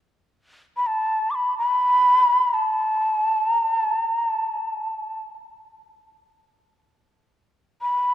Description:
japanese traditional, Japanese chamber music; free time; A4 = 439 Hz
breathy mellow shakuhachi; solo; 0.8-8.1 s; A5 to D6; -19 LUFS; equal
wet concert hall reverb, RT60 2.5 s; -19 LUFS; side -12 dB against mid
0.0-8.1 A section
free time

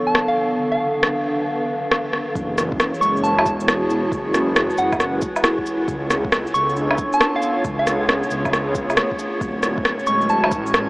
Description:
future garage; 136 BPM; 4/4; swing 66% on 16ths; F# minor; A4 = 440 Hz
mellow tine electric piano; accompaniment; 0.0-10.9 s; D3 to E4; -30 LUFS; equal; medium stereo tremolo, vintage 12-bit sampler grit, sidechain pumping, analog delay
warbly tape-like pad; sustained chords; 0.0-10.9 s; B3 to E#5; -24 LUFS; equal; chorus, built-in reverb, sidechain pumping
soft synth bell; melody; 0.1-10.5 s; E#5 to C#6; -23 LUFS; equal; chorus, vintage 12-bit sampler grit, diffuse ambient delay
electronic rim click, shaker, cabasa and woodblock; drums; 0.1-10.9 s; -22 LUFS; equal; overdrive
drifting glass-harmonics texture; texture; 3.0-10.9 s; C#4 to C#5; -32 LUFS; right 1 dB; chorus, built-in reverb
swelling detuned saw bass; bass; 2.4-10.9 s; D1 to C#2; -25 LUFS; equal; sidechain pumping
electronic kick drum; drums; 2.4-10.6 s; -30 LUFS; equal; overdrive
wet huge ambient reverb, RT60 5.4 s; dreamy mix soaked in reverb, small speaker sound; -17 LUFS; side -24 dB against mid
0.0-2.4 A section; 2.4-10.9 B section
0.0 C#7b9b13; 2.4 F#sus2; 5.9 C#7b9b13; 9.4 Dmaj7
0.15 | 0.59 1.03 1.47 1.91 | 2.35 2.80 3.24 3.68 | 4.12 4.56 5.00 5.44 | 5.88 6.33 6.77 7.21 | 7.65 8.09 8.53 8.97 | 9.41 9.86 10.30 10.74

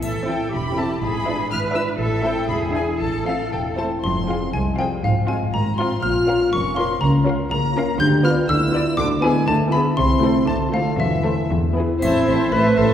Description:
cinematic, playful, whimsical film cue; 120 BPM; 2/4; straight; A minor, F minor from 4.0 s, A minor from 8.0 s; A4 = 444 Hz
rich chamber violin section; melody; 0.0-12.9 s; E5 to G6; -30 LUFS; left 3 dB
concert harp; arpeggios; 0.0-12.9 s; E2 to C5; -26 LUFS; left 3 dB
clear chamber cello section; bass; 0.0-12.9 s; C2 to B4; -25 LUFS; right 1 dB
rich chamber double bass section; bass; 0.0-12.9 s; E1 to D2; -25 LUFS; right 1 dB
triangle; percussion; 0.0-1.0, 12.0-12.9 s; -42 LUFS; left 2 dB
rich chamber violin section; second line; 0.3-12.9 s; F4 to F5; -28 LUFS; left 2 dB
warm chamber viola section; accompaniment; 0.3-12.9 s; A3 to F4; -26 LUFS; right 2 dB
xylophone with rubber mallets; melody; 3.3-12.9 s; E5 to G6; -25 LUFS; left 2 dB
mellow French horn section; sustained chords; 3.3-11.5 s; E3 to G4; -25 LUFS; left 1 dB
warm clarinet; second line; 12.0-12.9 s; E4 to B4; -20 LUFS; right 2 dB
warm tuba; bass; 12.0-12.9 s; A1; -27 LUFS; right 1 dB
wet concert hall reverb, RT60 2.0 s; heard from further back in the room; -17 LUFS; side -9 dB against mid
0.0-4.0 A section; 4.0-12.0 B section
0.0 Am; 1.0 E7/G#; 2.0 Am; 2.5 E7; 3.0 Am; 4.0 Fm; 5.0 Fm/Ab; 6.0 Bbm; 7.0 Bbm/Db; 8.0 Bdim/D; 9.0 E7/D; 10.0 Am/C; 10.5 Dm7; 11.0 Am/E; 11.5 E; 12.0 Am
| 0.02 0.53 | 1.02 1.51 | 2.00 2.50 | 3.01 3.52 | 4.04 4.54 | 5.04 5.54 | 6.03 6.53 | 7.02 7.51 | 8.00 8.49 | 8.98 9.47 | 9.97 10.47 | 10.99 11.50 | 12.02 12.52

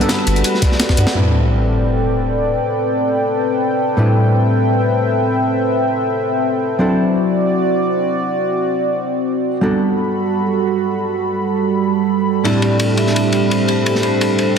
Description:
liquid drum and bass; free time; A dorian; A4 = 440 Hz
hollow-body jazz guitar; accompaniment; 0.0-14.6 s; A2 to B5; -18 LUFS; left 1 dB; tape echo
warm analog pad; sustained chords; 0.0-14.6 s; G3 to B5; -17 LUFS; right 1 dB; chorus, vintage 12-bit sampler grit, sidechain pumping
vibraphone with hard mallets; arpeggios; 0.0-1.2, 12.4-14.6 s; F#4 to F#5; -22 LUFS; left 3 dB; dub echo
breakbeat sampler-style drum kit; drums; 0.0-1.1 s; hi-hat, rim click, snare drum; -22 LUFS; equal
crunchy breakbeat drum kit; drums; 0.1-1.1, 12.5-14.5 s; ride cymbal, snare drum; -23 LUFS; left 1 dB; high-pass filter on cymbals, high-pass filter on snare, high-pass filter on room
saturated sub bass; bass; 0.3-1.1 s; G1 to G2; -15 LUFS; equal
electronic kick drum; drums; 0.6-1.0 s; -17 LUFS; equal
sub drop; sound effects; 1.1-2.6 s; -19 LUFS; equal
moderate lush hall reverb, RT60 2.0 s, studio reverb; dense, heavily limited modern master; -14 LUFS; side -6 dB against mid
0.0-1.2 A section; 1.2-14.6 B section
drum fill 0.8-1.2; band accent 1.1; impact 1.2-2.6
0.0 Gmaj9; 1.2 Am11; 6.8 D7; 9.6 Gmaj9; 12.4 Am11
free time

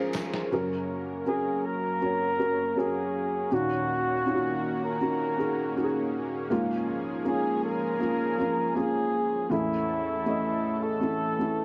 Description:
pop ballad; 80 BPM; 4/4; straight; A4 = 439 Hz
felt-muted upright piano; accompaniment; 0.0-11.6 s; A1 to Eb5; -31 LUFS; equal; cassette tape
lush unison pad; sustained chords; 0.0-11.6 s; Eb3 to Bb4; -38 LUFS; equal; chorus, cassette tape
lo-fi sampler-style drum kit; drums; 0.1-0.5 s; ride cymbal, snare drum; -39 LUFS; equal; cassette tape
warm flugelhorn; melody; 1.3-11.6 s; E4 to Bb4; -31 LUFS; equal; cassette tape
moderate spring reverb, RT60 2.5 s; home recording on cassette; -28 LUFS; mono
0.5-11.6 A section
drum fill 0.0-0.5
0.0 Db6; 0.5 Gb; 3.5 Ebm7; 6.5 Db6; 9.5 A
| 0.51 1.26 2.01 2.76 | 3.51 4.26 5.01 5.76 | 6.51 7.26 8.01 8.76 | 9.51 10.26 11.01

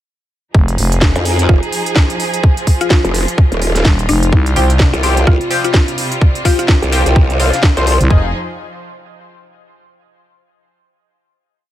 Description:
bass house; 127 BPM; 4/4; swing 58% on 16ths; F minor; A4 = 440 Hz
rich studio string section; sustained chords; 0.5-8.3 s; C3 to Ab4; -22 LUFS; right 2 dB; sidechain pumping, low-pass filter
growling FM bass; bass; 0.5-4.9, 8.0-8.3 s; Eb1 to C2; -14 LUFS; equal; sidechain pumping
garage drum kit; drums; 0.5-8.2 s; kick drum, toms; -10 LUFS; equal
garage drum kit; drums; 0.7-8.1 s; hi-hat, snare drum; -19 LUFS; equal
growl bass; bass; 1.2-8.0 s; Eb1 to F2; -14 LUFS; equal; chorus, tube saturation, sidechain pumping
mallet-like synth pluck; melody; 1.5-6.7 s; Eb4 to F4; -21 LUFS; left 3 dB; chorus, cassette tape, ping-pong delay
band-passed chord stab; stabs; 4.6-8.3 s; F3 to C5; -20 LUFS; left 3 dB; chorus, phaser, sidechain pumping, ping-pong delay
little or no reverb; -10 LUFS; side -13 dB against mid
0.5-8.1 drop; 8.1-10.0 final chord
drop 0.5-8.1
0.5 Fm7; 4.3 Csus4; 8.1 Fm7
| 0.55 1.02 1.49 1.96 | 2.44 2.91 3.38 3.85 | 4.33 4.80 5.27 5.74 | 6.21 6.69 7.16 7.63 | 8.10

